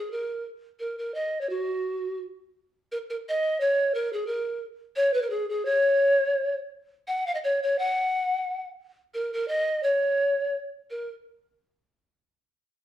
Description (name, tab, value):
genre	alpine folk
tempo	172 BPM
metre	3/4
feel	swing 54% on 8ths, rubato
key	F# major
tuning	A4 = 440 Hz
part	polished pan flute	solo	0.0-11.1 s	F#4 to F#5	-24 LUFS	equal	none
room	moderate large studio reverb, RT60 0.8 s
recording	band playing live in one room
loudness	-24 LUFS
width	side -12 dB against mid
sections	0.0-2.5 A section; 2.5-10.9 A section; 10.9-12.0 B section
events	none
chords	none